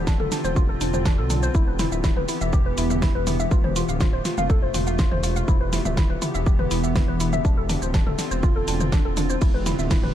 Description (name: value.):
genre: melodic techno.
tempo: 122 BPM.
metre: 4/4.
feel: straight.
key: E phrygian.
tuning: A4 = 440 Hz.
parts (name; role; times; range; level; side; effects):
evolving wavetable pad; sustained chords; 0.0-10.1 s; C3 to G4; -29 LUFS; equal; chorus, built-in reverb, sidechain pumping.
woody wave-folded pluck; arpeggios; 0.0-10.1 s; D4 to F5; -28 LUFS; left 1 dB; wide subtle chorus, cassette tape, sidechain pumping, ping-pong delay.
dark detuned saw bass; bass; 0.0-10.1 s; D1 to B1; -26 LUFS; equal; sidechain pumping.
deep house drum kit; drums; 0.1-10.1 s; hi-hat, ride cymbal, shaker, snare drum, toms; -28 LUFS; equal; sidechain pumping on perc, sidechain pumping on toms, sidechain pumping on hats, sidechain pumping on cymbals.
electronic kick drum; drums; 0.1-10.0 s; none; -20 LUFS; equal; none.
room: digital ambience.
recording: dark, warm production.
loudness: -19 LUFS.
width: side -11 dB against mid.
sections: 0.0-10.1 A section.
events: none.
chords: 0.0 Dm7; 1.5 Em; 3.5 F; 5.5 Em; 7.4 Dm7; 9.4 Em.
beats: 0.07 0.56 1.05 | 1.55 2.04 2.53 3.02 | 3.51 4.01 4.50 4.99 | 5.48 5.97 6.46 6.96 | 7.45 7.94 8.43 8.92 | 9.42 9.91.